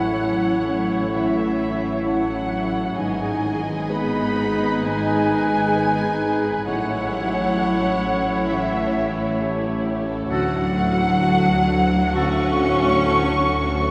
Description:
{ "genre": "cinematic, emotional film score for orchestra", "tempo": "66 BPM", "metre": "4/4", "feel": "rubato", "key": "unclear", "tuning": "A4 = 441 Hz", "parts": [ { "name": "muted symphonic violin section", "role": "melody", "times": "0.0-13.9 s", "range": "E5 to C#6", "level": "-30 LUFS", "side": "equal", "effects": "none" }, { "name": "muted chamber violin section", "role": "second line", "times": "0.0-13.9 s", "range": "A3 to F#5", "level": "-32 LUFS", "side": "equal", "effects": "none" }, { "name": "small flute group", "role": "second line", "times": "0.0-13.9 s", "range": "E5 to C#6", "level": "-31 LUFS", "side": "equal", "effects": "none" }, { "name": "warm clarinet", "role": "second line", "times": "0.0-12.5 s", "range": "D#4 to F#4", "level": "-33 LUFS", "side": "equal", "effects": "none" }, { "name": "warm oboe", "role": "second line", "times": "0.0-12.5 s", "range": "A4 to C#5", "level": "-36 LUFS", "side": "equal", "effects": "none" }, { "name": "muted studio viola section", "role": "accompaniment", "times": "0.0-13.9 s", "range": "F#3 to G#4", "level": "-30 LUFS", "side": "equal", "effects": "none" }, { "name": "warm grand piano", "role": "accompaniment", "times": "0.0-13.9 s", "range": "D2 to B4", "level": "-30 LUFS", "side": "equal", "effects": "none" }, { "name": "mellow French horn section", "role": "sustained chords", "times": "0.0-13.9 s", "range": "A3 to F#4", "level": "-31 LUFS", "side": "equal", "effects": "none" }, { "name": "muted symphonic cello section", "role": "bass", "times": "0.0-13.9 s", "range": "E3 to C#4", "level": "-28 LUFS", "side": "equal", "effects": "none" }, { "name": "muted symphonic double bass section", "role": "bass", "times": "0.0-13.9 s", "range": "G#1 to D2", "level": "-31 LUFS", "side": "equal", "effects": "none" } ], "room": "wet cathedral reverb, RT60 6.2 s", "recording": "heard from further back in the room", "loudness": "-21 LUFS", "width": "mono", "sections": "0.0-13.9 A section", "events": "none", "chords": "0.0 A; 3.0 G#m; 6.7 A7; 10.3 D" }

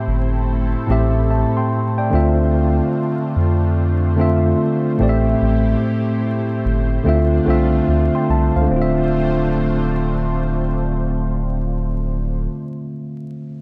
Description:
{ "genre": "lo-fi hip hop", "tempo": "73 BPM", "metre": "4/4", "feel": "swing 64% on 16ths", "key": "D minor", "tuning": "A4 = 440 Hz", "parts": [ { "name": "tine electric piano", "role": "accompaniment", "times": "0.0-13.6 s", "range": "A2 to C6", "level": "-20 LUFS", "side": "equal", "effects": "cassette tape" }, { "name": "lush unison pad", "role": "sustained chords", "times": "0.0-12.5 s", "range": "A3 to C5", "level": "-31 LUFS", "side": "equal", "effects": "chorus, phaser" }, { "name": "soft dub sub bass", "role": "bass", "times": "0.1-12.5 s", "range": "D1 to F2", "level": "-22 LUFS", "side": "equal", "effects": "none" } ], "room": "light reverb", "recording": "dark, warm production, vinyl crackle", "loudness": "-18 LUFS", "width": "mono", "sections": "0.0-8.7 A section; 8.7-12.0 B section", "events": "none", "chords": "0.0 Am7; 2.1 Dm7; 5.0 Am7; 7.0 Dm7" }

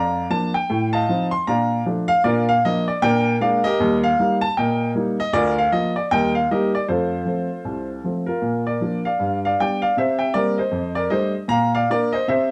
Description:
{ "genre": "jazz, stride piano", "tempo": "155 BPM", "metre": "4/4", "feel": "swing 62% on 8ths", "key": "Bb major", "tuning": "A4 = 443 Hz", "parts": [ { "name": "warm baby grand piano", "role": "solo", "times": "0.0-12.5 s", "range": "C2 to C6", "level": "-20 LUFS", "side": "equal", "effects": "none" } ], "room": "moderate studio reverb, RT60 0.8 s", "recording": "none", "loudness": "-21 LUFS", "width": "mono", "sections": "0.0-8.4 A section; 8.4-12.5 B section", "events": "none", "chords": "0.0 Bb; 0.7 F7/A; 1.5 Bbmaj7; 2.2 Bb; 3.0 Bb7; 3.8 Eb; 5.3 Bb/D; 6.1 Eb; 6.9 F; 8.4 Bb; 9.2 G; 10.0 C7; 10.7 F69; 11.5 Bb" }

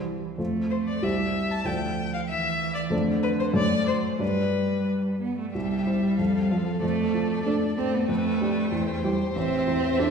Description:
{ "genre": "quick classical-period movement for piano quartet", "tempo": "94 BPM", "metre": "2/4", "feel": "straight", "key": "C major", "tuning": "A4 = 439 Hz", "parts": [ { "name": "rich cello", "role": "second line", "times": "0.0-10.1 s", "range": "D3 to D4", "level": "-26 LUFS", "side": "right 3 dB", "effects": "none" }, { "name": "warm baby grand piano", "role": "accompaniment", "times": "0.0-10.1 s", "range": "A1 to D5", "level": "-28 LUFS", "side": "left 1 dB", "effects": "none" }, { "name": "rich violin", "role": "melody", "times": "0.7-10.1 s", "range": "B4 to A5", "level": "-31 LUFS", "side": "left 5 dB", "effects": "none" }, { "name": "rich violin", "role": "second line", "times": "5.6-10.1 s", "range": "G4 to C5", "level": "-34 LUFS", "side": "left 3 dB", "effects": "none" } ], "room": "wet scoring stage reverb, RT60 1.7 s", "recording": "heard from further back in the room", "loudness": "-23 LUFS", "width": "side -6 dB against mid", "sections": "0.0-5.5 A section; 5.5-10.1 B section", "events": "none", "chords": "0.4 F; 1.0 C; 1.7 Dm; 2.9 Dm/F; 3.6 D7/F#; 4.2 G; 5.5 C; 6.2 F; 6.8 Dm/F; 8.1 G7/F; 8.7 C/E; 9.4 Am" }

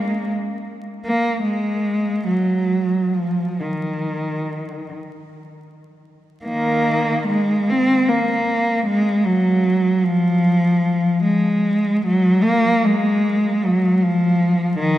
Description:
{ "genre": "classical, free, expressive piece for unaccompanied cello", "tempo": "34-54 BPM (dotted quarters)", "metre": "6/8", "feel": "rubato", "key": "unclear", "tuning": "A4 = 440 Hz", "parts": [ { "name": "rich cello", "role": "solo", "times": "0.0-15.0 s", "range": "D#3 to C4", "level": "-17 LUFS", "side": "equal", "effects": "none" } ], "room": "wet cathedral reverb, RT60 4.1 s", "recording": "vinyl crackle", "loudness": "-16 LUFS", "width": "side -14 dB against mid", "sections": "0.0-6.5 A section; 6.5-15.0 B section", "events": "none", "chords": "none" }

